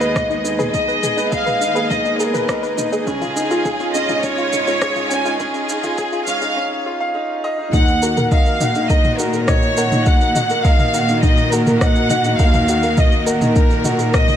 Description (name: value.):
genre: piano and strings electronica.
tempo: 103 BPM.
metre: 4/4.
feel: straight.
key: Eb minor.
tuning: A4 = 440 Hz.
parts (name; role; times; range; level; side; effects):
warm chamber violin section; melody; 0.0-14.4 s; Ab4 to Ab5; -20 LUFS; equal; low-pass filter.
rich studio string section; sustained chords; 0.0-14.4 s; Db3 to Eb5; -26 LUFS; equal; sidechain pumping, low-pass filter.
soft round pluck; arpeggios; 0.0-14.2 s; Db4 to Cb5; -28 LUFS; left 4 dB; none.
clear baby grand piano; riff; 0.0-14.4 s; Db4 to Gb5; -22 LUFS; equal; ping-pong delay.
muted symphonic cello section; bass; 0.0-14.4 s; Db2 to Bb2; -24 LUFS; right 1 dB; tube saturation, sidechain pumping.
organic electronic drum kit; drums; 0.0-14.4 s; rim click, shaker, toms; -24 LUFS; right 1 dB; none.
electronic kick drum; drums; 0.2-14.3 s; none; -16 LUFS; equal; overdrive.
room: moderate lush hall reverb, RT60 2.6 s.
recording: high-pass filter.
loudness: -15 LUFS.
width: side -10 dB against mid.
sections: 0.0-7.7 A section; 7.7-14.4 B section.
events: build-up 0.0-7.7; drop 7.7-14.4.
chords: 0.0 Abm; 3.1 Dbadd9; 7.7 Ebm.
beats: 0.16 | 0.74 1.33 1.91 2.49 | 3.08 3.66 4.24 4.82 | 5.41 5.99 6.57 7.15 | 7.74 8.32 8.90 9.48 | 10.06 10.65 11.23 11.81 | 12.39 12.98 13.56 14.14.